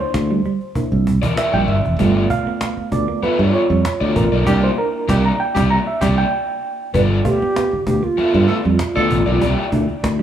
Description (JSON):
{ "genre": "funk", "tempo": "97 BPM", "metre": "4/4", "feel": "straight", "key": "unclear", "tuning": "A4 = 440 Hz", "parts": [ { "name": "semi-hollow electric guitar", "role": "riff", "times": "0.0-10.2 s", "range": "E3 to B3", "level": "-25 LUFS", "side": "right 6 dB", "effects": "none" }, { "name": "reed electric piano", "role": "stabs", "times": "0.0-10.2 s", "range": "G2 to Bb5", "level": "-22 LUFS", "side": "right 3 dB", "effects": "fast tremolo" }, { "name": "fingered electric bass", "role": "bass", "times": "0.1-10.2 s", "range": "F1 to G2", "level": "-18 LUFS", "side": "equal", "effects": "none" }, { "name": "cajon", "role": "drums", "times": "0.1-10.2 s", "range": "none", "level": "-25 LUFS", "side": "equal", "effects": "none" }, { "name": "raw garage guitar", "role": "accompaniment", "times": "1.2-9.6 s", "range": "Bb3 to E5", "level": "-22 LUFS", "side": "left 2 dB", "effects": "overdrive, spring reverb" }, { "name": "breathy tenor saxophone", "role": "second line", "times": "4.5-9.4 s", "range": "G4 to A4", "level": "-23 LUFS", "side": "right 2 dB", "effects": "none" }, { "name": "mellow hollow concert flute", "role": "melody", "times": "6.9-9.0 s", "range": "F4 to B4", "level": "-19 LUFS", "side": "right 2 dB", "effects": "none" } ], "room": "moderate studio reverb, RT60 0.9 s", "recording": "band playing live in one room, studio ambience", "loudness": "-15 LUFS", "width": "side -10 dB against mid", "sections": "0.0-6.9 A section; 6.9-10.2 B section", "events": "reed electric piano solo 0.0-6.9; band accent 4.5-6.9", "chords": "0.0 C9; 2.0 G9; 4.5 C9; 6.9 G9; 9.4 C9", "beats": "0.14 0.76 1.38 | 2.00 2.62 3.23 3.85 | 4.47 5.09 5.71 6.32 | 6.94 7.56 8.18 8.80 | 9.41 10.03" }